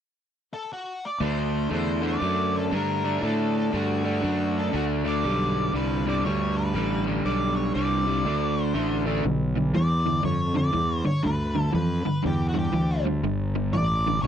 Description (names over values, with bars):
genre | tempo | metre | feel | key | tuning
rock | 120 BPM | 4/4 | swing 64% on 8ths | G mixolydian from 9.3 s | A4 = 440 Hz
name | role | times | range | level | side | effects
octave-fuzz lead guitar | melody | 0.5-14.3 s | F#4 to D5 | -30 LUFS | left 1 dB | distortion, slapback echo
crunchy overdriven guitar | riff | 1.2-14.3 s | G2 to D4 | -26 LUFS | right 1 dB | none
fuzz fingered electric bass | bass | 1.2-14.3 s | G1 to A2 | -27 LUFS | equal | overdrive
room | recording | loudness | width
little or no reverb | dry, close 1970s-style studio recording | -22 LUFS | side -9 dB against mid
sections
0.0-1.2 A section; 1.2-9.3 B section; 9.3-14.3 C section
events
none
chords
0.0 N.C.; 1.2 D; 5.2 G; 8.3 D5; 9.3 G7(no3)